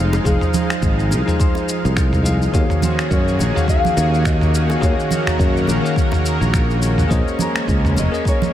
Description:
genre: sunset chillout.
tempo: 105 BPM.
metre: 4/4.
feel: swing 58% on 16ths.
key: unclear.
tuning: A4 = 440 Hz.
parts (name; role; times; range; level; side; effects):
nylon-string guitar; melody; 0.0-8.5 s; Ab4 to F5; -26 LUFS; left 2 dB; tape echo.
bell-like tine electric piano; accompaniment; 0.0-8.5 s; Eb3 to F5; -22 LUFS; moving between left 3 dB and right 3 dB; auto-pan, diffuse ambient delay.
lush unison pad; sustained chords; 0.0-8.5 s; Eb3 to F5; -24 LUFS; equal; chorus.
sustaining fretless electric bass; bass; 0.0-8.1 s; F1 to Gb2; -18 LUFS; equal; none.
dusty soul sampler-style drum kit; drums; 0.1-8.5 s; cabasa, finger snaps, toms; -23 LUFS; equal; studio reverb.
bongos and congas; percussion; 0.1-8.5 s; none; -27 LUFS; right 5 dB; none.
electronic kick drum; drums; 0.3-8.4 s; none; -19 LUFS; equal; studio reverb.
room: light reverb.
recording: none.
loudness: -15 LUFS.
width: side -11 dB against mid.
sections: 0.0-8.5 A section.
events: none.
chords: 0.0 Fm7; 2.5 Ebm11; 7.1 Bbm11.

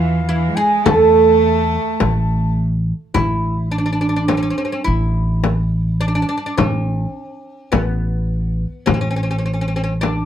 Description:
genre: Arabic maqam ensemble.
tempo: 105 BPM (eighths).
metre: 10/8.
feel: straight.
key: A maqam suznak.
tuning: A4 = 441 Hz.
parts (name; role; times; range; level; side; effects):
oud; melody; 0.0-10.3 s; B3 to A4; -18 LUFS; right 3 dB; none.
breathy ney; second line; 0.0-2.5 s; F5 to A5; -24 LUFS; left 8 dB; none.
warm studio cello section; second line; 0.0-2.6 s; E3 to A3; -21 LUFS; right 2 dB; none.
upright bass; bass; 0.0-10.2 s; A1 to E2; -19 LUFS; equal; none.
frame drum; percussion; 0.9-10.3 s; none; -19 LUFS; left 5 dB; none.
room: moderate studio reverb, RT60 0.6 s.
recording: dark, warm production.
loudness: -15 LUFS.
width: side -10 dB against mid.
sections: 0.0-3.1 A section; 3.1-10.3 B section.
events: none.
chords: none.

